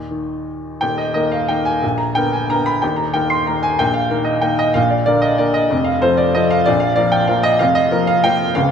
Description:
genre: classical, piano waltz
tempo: 163-198 BPM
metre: 3/4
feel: rubato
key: Eb major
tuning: A4 = 441 Hz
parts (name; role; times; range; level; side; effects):
- bright upright piano; solo; 0.0-8.7 s; Db1 to C6; -14 LUFS; equal; none
room: moderate scoring stage reverb, RT60 1.7 s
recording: minimal, uncompressed stereo recording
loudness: -14 LUFS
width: side -7 dB against mid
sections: 0.8-8.7 A section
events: none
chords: 0.0 Eb5; 1.8 Bb; 2.8 Eb5; 4.8 Bb; 5.7 F; 6.7 Bb5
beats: 0.10 0.47 | 0.82 1.16 1.50 | 1.83 2.16 2.50 | 2.82 3.15 3.48 | 3.80 4.11 4.44 | 4.77 5.08 5.41 | 5.72 6.03 6.36 | 6.67 6.98 7.29 | 7.60 7.92 8.24 | 8.55

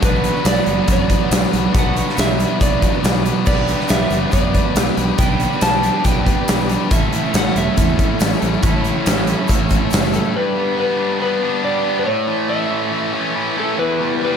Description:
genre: classic rock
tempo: 139 BPM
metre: 4/4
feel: straight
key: unclear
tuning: A4 = 438 Hz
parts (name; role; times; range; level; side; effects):
- electric slide guitar; melody; 0.0-14.4 s; A4 to A5; -22 LUFS; equal; none
- tonewheel organ; sustained chords; 0.0-10.3 s; A3 to D5; -31 LUFS; equal; none
- cranked stack guitar; riff; 0.0-14.4 s; E2 to B4; -23 LUFS; right 10 dB; overdrive, slapback echo
- overdriven electric guitar; riff; 0.0-14.4 s; E2 to B4; -22 LUFS; left 10 dB; none
- fuzz fingered electric bass; bass; 0.0-10.2 s; E1 to F#2; -22 LUFS; equal; overdrive
- huge arena drum kit; drums; 0.0-10.2 s; crash cymbal, hi-hat, kick drum, snare drum, tambourine; -17 LUFS; equal; none
- egg shaker; percussion; 0.0-10.3 s; none; -40 LUFS; right 8 dB; none
room: light reverb, small room ambience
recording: none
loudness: -15 LUFS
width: side -7 dB against mid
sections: 0.0-10.3 A section; 10.3-14.4 B section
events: none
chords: 0.0 Bm; 3.5 G; 6.9 A; 10.3 G; 12.1 A; 13.8 Em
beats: | 0.03 0.46 0.89 1.32 | 1.75 2.18 2.61 3.04 | 3.47 3.90 4.33 4.76 | 5.20 5.62 6.05 6.49 | 6.91 7.34 7.77 8.20 | 8.63 9.06 9.49 9.92 | 10.35 10.78 11.21 11.64 | 12.07 12.51 12.94 13.37 | 13.80 14.23

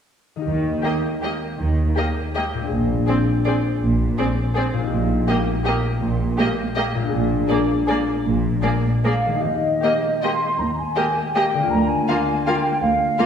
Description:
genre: classical, orchestral ballroom waltz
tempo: 145-176 BPM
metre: 3/4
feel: rubato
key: Eb major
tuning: A4 = 441 Hz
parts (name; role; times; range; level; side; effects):
- concert harp; arpeggios; 0.4-13.3 s; Bb2 to Bb4; -25 LUFS; left 3 dB; none
- muted symphonic cello section; bass; 0.5-13.1 s; D2 to Eb3; -26 LUFS; right 2 dB; none
- muted symphonic double bass section; bass; 0.5-8.6 s; Bb1 to Eb2; -24 LUFS; right 1 dB; none
- muted symphonic violin section; second line; 0.8-13.3 s; F4 to Ab4; -28 LUFS; left 1 dB; none
- muted symphonic viola section; accompaniment; 0.8-13.3 s; Bb3 to C4; -27 LUFS; right 2 dB; none
- muted symphonic violin section; melody; 0.9-13.3 s; D5 to F5; -31 LUFS; left 2 dB; none
- mellow hollow flute section; second line; 9.0-13.3 s; Eb5 to C6; -21 LUFS; equal; none
room: wet scoring stage reverb, RT60 1.6 s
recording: heard from further back in the room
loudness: -18 LUFS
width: side -8 dB against mid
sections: 0.5-9.4 A section; 9.4-13.3 B section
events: none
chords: 0.5 Eb; 2.7 Bb9; 4.9 Eb/Bb; 7.1 Bb7; 9.4 Eb; 11.7 Bb7/D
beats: | 0.46 0.84 1.23 | 1.60 1.97 2.36 | 2.72 3.08 3.46 | 3.82 4.18 4.56 | 4.91 5.28 5.66 | 6.02 6.38 6.76 | 7.12 7.49 7.88 | 8.25 8.63 9.04 | 9.44 9.83 10.23 | 10.60 10.97 11.36 | 11.72 12.08 12.47 | 12.82 13.19

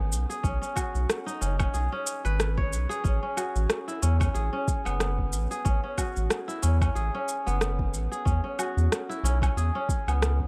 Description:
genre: organic downtempo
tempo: 92 BPM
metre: 4/4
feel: swing 56% on 16ths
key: unclear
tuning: A4 = 440 Hz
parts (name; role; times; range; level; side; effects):
- kora; arpeggios; 0.0-10.5 s; B3 to C#5; -34 LUFS; equal; delay
- round analog bass; bass; 0.0-10.5 s; F#1 to E2; -28 LUFS; equal; sidechain pumping
- electronic shaker, woodblock and rim click; drums; 0.1-10.4 s; none; -34 LUFS; equal; overdrive
- electronic kick drum; drums; 0.4-10.5 s; none; -31 LUFS; equal; overdrive
room: light reverb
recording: dark, warm production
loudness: -27 LUFS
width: mono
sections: 0.0-10.5 A section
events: none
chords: 0.0 B; 3.0 A6; 8.3 E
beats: | 0.44 1.09 1.74 2.40 | 3.05 3.70 4.35 5.00 | 5.66 6.31 6.96 7.61 | 8.27 8.92 9.57 10.22

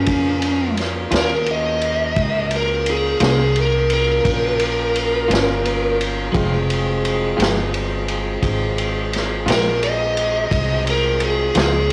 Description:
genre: slow blues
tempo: 58 BPM (dotted quarters)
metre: 12/8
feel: straight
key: F minor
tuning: A4 = 444 Hz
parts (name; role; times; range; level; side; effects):
- smooth overdriven lead guitar; melody; 0.0-11.9 s; Db4 to Eb5; -22 LUFS; equal; cassette tape
- tonewheel organ; sustained chords; 0.0-11.9 s; Ab3 to Bb4; -28 LUFS; equal; slow rotary speaker, overdrive, chorus vibrato, cassette tape
- upright bass; bass; 0.0-11.9 s; F1 to F2; -26 LUFS; equal; none
- vintage drum kit; drums; 0.1-11.9 s; kick drum, ride cymbal, snare drum; -25 LUFS; equal; cassette tape
- electric guitar through a small old amp; accompaniment; 1.1-11.8 s; Bb2 to F4; -25 LUFS; equal; harmonic tremolo, cassette tape
room: moderate studio reverb, RT60 0.6 s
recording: home recording on cassette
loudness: -19 LUFS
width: mono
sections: 0.0-11.9 A section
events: lead electric guitar solo 0.0-11.9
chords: 0.0 Bbm; 6.3 Fm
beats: 0.08 1.12 | 2.17 3.21 4.25 5.30 | 6.34 7.38 8.43 9.47 | 10.51 11.55

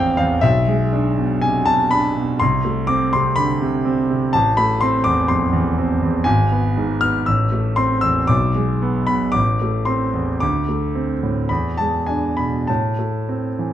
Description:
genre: classical, romantic character piece for solo piano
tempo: 48-62 BPM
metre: 2/4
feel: rubato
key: A minor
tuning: A4 = 440 Hz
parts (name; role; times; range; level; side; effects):
- clear concert grand piano; solo; 0.0-13.7 s; G#1 to E#6; -16 LUFS; equal; none
room: moderate recital hall reverb, RT60 1.5 s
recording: close, detailed microphones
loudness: -16 LUFS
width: side -11 dB against mid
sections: 0.0-13.7 A section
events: none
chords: 0.4 E7/B; 2.4 Am/C; 4.3 Am; 6.3 G#m6; 7.3 Am; 8.3 Bm6; 9.3 Am; 10.4 D5; 11.5 E7; 12.7 Am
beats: | 0.42 1.41 | 2.39 3.36 | 4.33 5.30 | 6.27 7.26 | 8.29 9.34 | 10.40 11.49 | 12.68

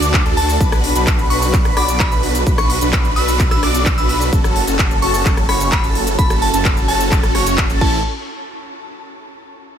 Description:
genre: EDM, festival progressive house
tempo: 129 BPM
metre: 4/4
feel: straight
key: unclear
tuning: A4 = 440 Hz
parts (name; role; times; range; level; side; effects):
- wide unison lead; arpeggios; 0.0-8.0 s; A5 to D6; -24 LUFS; equal; ensemble chorus, sidechain pumping, tape echo
- supersaw chords; riff; 0.0-8.0 s; C#4 to D5; -21 LUFS; right 2 dB; phaser, sidechain pumping
- wide detuned saw bass; bass; 0.0-8.0 s; F#1 to D2; -21 LUFS; equal; chorus, sidechain pumping
- house drum kit; drums; 0.0-7.9 s; cabasa, crash cymbal, handclaps, hi-hat, rim click; -22 LUFS; equal; small room ambience
- electronic kick drum; drums; 0.1-7.9 s; none; -17 LUFS; equal; small room ambience
- glassy synth bell; melody; 0.4-8.0 s; A5 to E6; -24 LUFS; left 1 dB; chorus, tape echo
room: little or no reverb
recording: none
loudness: -13 LUFS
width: side -8 dB against mid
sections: 0.0-8.0 A section; 8.0-9.8 B section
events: drop 0.0-8.0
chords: 0.0 D; 0.6 Bm; 4.3 F#m; 7.8 A; 8.0 N.C.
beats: 0.14 | 0.60 1.07 1.53 2.00 | 2.46 2.93 3.40 3.86 | 4.33 4.79 5.26 5.72 | 6.19 6.65 7.12 7.58 | 8.05

